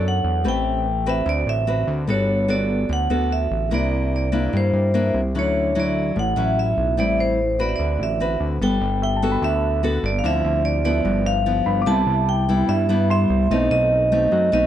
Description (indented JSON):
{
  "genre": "bossa nova",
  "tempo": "147 BPM",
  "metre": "4/4",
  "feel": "straight",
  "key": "D major, G major from 8.6 s",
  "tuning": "A4 = 441 Hz",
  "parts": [
    { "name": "vibraphone with medium hard mallets", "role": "melody", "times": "0.0-14.7 s", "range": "C5 to A5", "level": "-22 LUFS", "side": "right 2 dB", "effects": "none" },
    { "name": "nylon-string guitar", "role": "accompaniment", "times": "0.0-14.7 s", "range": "G2 to C#5", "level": "-22 LUFS", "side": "left 2 dB", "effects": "none" },
    { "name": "fat analog bass", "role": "bass", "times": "0.0-14.7 s", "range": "G1 to G2", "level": "-23 LUFS", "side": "equal", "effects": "none" },
    { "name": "clear concert grand piano", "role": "accompaniment", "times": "9.0-13.7 s", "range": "E5 to D6", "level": "-32 LUFS", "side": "right 1 dB", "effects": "none" }
  ],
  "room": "light reverb",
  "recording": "dark, warm production",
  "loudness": "-18 LUFS",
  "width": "side -11 dB against mid",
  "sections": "0.0-8.6 A section; 8.6-14.7 B section",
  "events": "none",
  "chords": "0.4 Am9; 1.3 D13; 2.1 Gmaj9; 3.7 C9; 5.3 Dmaj9; 7.0 Am7; 7.8 D13; 8.6 Gmaj9; 10.2 Dm9; 11.1 G6; 11.9 Cmaj7; 13.5 B7b9"
}